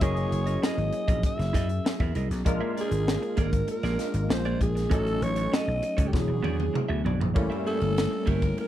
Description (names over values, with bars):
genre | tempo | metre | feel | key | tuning
polished 1980s jazz-funk pop | 98 BPM | 4/4 | straight | unclear | A4 = 438 Hz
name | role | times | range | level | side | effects
growling alto saxophone | melody | 0.0-8.7 s | G4 to E5 | -31 LUFS | right 1 dB | slapback echo
barky tine electric piano | accompaniment | 0.0-8.7 s | F#3 to A#4 | -31 LUFS | left 2 dB | overdrive, ensemble chorus
clean electric guitar | riff | 0.0-8.6 s | A#3 to E5 | -35 LUFS | right 6 dB | wide subtle chorus
vintage slap bass | bass | 0.0-8.5 s | E1 to F#2 | -28 LUFS | equal | none
crisp fusion drum kit | drums | 0.0-8.7 s | hi-hat, kick drum, ride cymbal, snare drum, toms | -28 LUFS | equal | none
room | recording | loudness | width
small room ambience | none | -24 LUFS | side -12 dB against mid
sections
0.0-7.4 A section; 7.4-8.7 A section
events
drum fill 6.1-7.4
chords
0.0 F#13; 2.5 A#7; 4.9 D#m7b5/A; 6.1 E9; 7.4 A7b9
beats
| 0.02 0.63 1.24 1.85 | 2.46 3.07 3.69 4.30 | 4.91 5.52 6.13 6.74 | 7.35 7.97 8.58